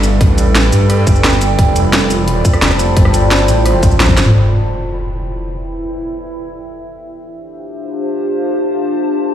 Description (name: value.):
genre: dark technical drum and bass.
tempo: 174 BPM.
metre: 4/4.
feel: straight.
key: E phrygian.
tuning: A4 = 443 Hz.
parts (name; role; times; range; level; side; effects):
deep dark ambient pad; sustained chords; 0.0-9.3 s; G3 to A5; -21 LUFS; equal; chorus, built-in reverb, sidechain pumping.
wide detuned saw bass; bass; 0.0-4.3 s; F1 to G2; -13 LUFS; equal; chorus, tube saturation.
drum and bass drum kit; drums; 0.0-4.3 s; hi-hat, rim click, shaker, snare drum, toms; -15 LUFS; equal; overdrive, low-pass filter on hats, low-pass filter on perc, low-pass filter on snare, low-pass filter on toms, low-pass filter on room.
warbly tape-like pad; texture; 0.0-9.3 s; D4 to B5; -20 LUFS; equal; chorus, built-in reverb, phaser, sidechain pumping.
electronic kick drum; drums; 0.2-4.2 s; none; -11 LUFS; equal; none.
impact; sound effects; 4.3-5.7 s; none; -22 LUFS; equal; none.
room: light reverb.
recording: played on a big sound system in a bare room, stone room reverb.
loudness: -10 LUFS.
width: side -10 dB against mid.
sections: 0.0-4.3 A section; 4.3-9.3 B section.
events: drop 0.0-4.3; drum fill 4.0-4.3; band accent 4.2; impact 4.3-5.7.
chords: 0.0 Gadd9; 1.6 F; 4.3 Em; 7.1 Dm.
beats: | 0.21 0.55 0.90 1.24 | 1.59 1.93 2.28 2.62 | 2.97 3.31 3.66 4.00 | 4.34 4.69 5.04 5.38 | 5.72 6.07 6.41 6.76 | 7.10 7.45 7.79 8.14 | 8.48 8.83 9.17.